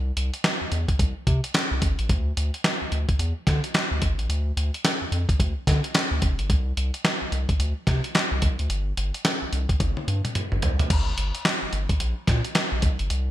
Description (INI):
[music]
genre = R&B, new jack swing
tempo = 109 BPM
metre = 4/4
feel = swing 61% on 16ths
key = unclear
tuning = A4 = 441 Hz
[part]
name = round analog bass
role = bass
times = 0.0-13.3 s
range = F1 to D3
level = -25 LUFS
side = equal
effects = none
[part]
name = dusty soul sampler-style drum kit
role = drums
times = 0.2-13.3 s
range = crash cymbal, handclaps, hi-hat, kick drum, snare drum, toms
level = -23 LUFS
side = equal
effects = gated reverb
[sound]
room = light reverb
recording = bright 1980s-style digital production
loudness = -22 LUFS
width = side -14 dB against mid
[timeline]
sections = 0.0-10.9 A section; 10.9-13.3 B section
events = drum fill 9.8-10.9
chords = none